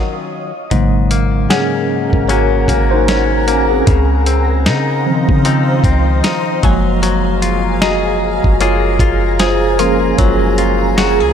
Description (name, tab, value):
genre	contemporary R&B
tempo	76 BPM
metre	4/4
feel	swing 58% on 16ths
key	unclear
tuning	A4 = 440 Hz
part	mellow tine electric piano	accompaniment	0.0-11.3 s	Db3 to Gb5	-18 LUFS	right 1 dB	medium stereo tremolo
part	direct-recorded clean electric guitar	arpeggios	0.0-11.3 s	Ab2 to Ab4	-19 LUFS	left 9 dB	ping-pong delay
part	granular cloud pad	sustained chords	0.7-11.3 s	Ab4 to Bb5	-19 LUFS	right 2 dB	built-in reverb
part	clean 808-style bass	bass	0.7-11.3 s	Gb1 to Db3	-16 LUFS	equal	none
part	dusty soul sampler-style drum kit	drums	0.7-11.2 s	hi-hat, kick drum, snare drum	-17 LUFS	equal	none
part	mallet-like synth pluck	texture	1.5-11.3 s	Gb5 to C6	-28 LUFS	right 3 dB	chorus, ping-pong delay
room	digital ambience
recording	none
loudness	-11 LUFS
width	side -8 dB against mid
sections	0.7-11.3 A section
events	stop 0.0-0.7; tine electric piano solo 0.7-11.3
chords	0.0 N.C.; 0.7 Ab9sus4; 3.9 Dbmaj9; 6.6 Gbmaj9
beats	| 0.71 1.50 2.29 3.08 | 3.87 4.66 5.45 6.24 | 7.03 7.82 8.61 9.40 | 10.19 10.98